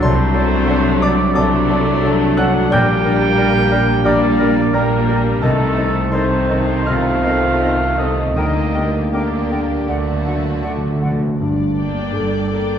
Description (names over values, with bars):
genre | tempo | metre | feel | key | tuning
classical, romantic movement for piano and orchestra | 76-91 BPM | 4/4 | rubato | G minor | A4 = 440 Hz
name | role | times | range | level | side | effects
muted symphonic violin section | melody | 0.0-12.8 s | D4 to D5 | -32 LUFS | left 5 dB | none
warm concert grand piano | melody | 0.0-12.8 s | Bb1 to G6 | -19 LUFS | left 2 dB | none
hollow concert flute | second line | 0.0-11.1 s | D5 to G5 | -29 LUFS | left 1 dB | none
mellow clarinet | second line | 0.0-11.2 s | A4 to D5 | -29 LUFS | left 2 dB | none
muted chamber violin section | second line | 0.0-12.8 s | A3 to G5 | -27 LUFS | left 2 dB | none
muted symphonic viola section | accompaniment | 0.0-12.8 s | D3 to D4 | -26 LUFS | right 2 dB | none
warm bassoon | accompaniment | 0.0-11.2 s | D3 to G3 | -28 LUFS | right 1 dB | none
clear trombone section | sustained chords | 0.0-11.1 s | Eb3 to D4 | -26 LUFS | right 4 dB | none
dark French horn section | sustained chords | 0.0-12.8 s | A3 to A4 | -24 LUFS | left 3 dB | none
dark trumpet section | stabs | 0.0-11.0 s | A4 to G5 | -22 LUFS | right 2 dB | none
muted symphonic cello section | bass | 0.0-12.8 s | D2 to C3 | -25 LUFS | right 4 dB | none
muted symphonic double bass section | bass | 0.0-12.8 s | G1 to D2 | -23 LUFS | right 3 dB | none
timpani | percussion | 8.4-12.5 s | G2 to D3 | -24 LUFS | right 2 dB | none
room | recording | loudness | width
wet concert hall reverb, RT60 1.8 s | dark, warm production | -14 LUFS | side -8 dB against mid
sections
0.0-11.4 A section; 11.4-12.8 B section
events
timpani fill 9.9-11.4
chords
0.0 D7/C; 2.7 Gm/Bb; 5.4 Adim/C; 8.4 Gm/D; 9.9 D; 11.4 Gm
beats
| 0.01 0.67 1.35 2.03 | 2.72 3.39 4.06 4.75 | 5.43 6.13 6.88 7.62 | 8.37 9.14 9.89 10.65 | 11.40 12.17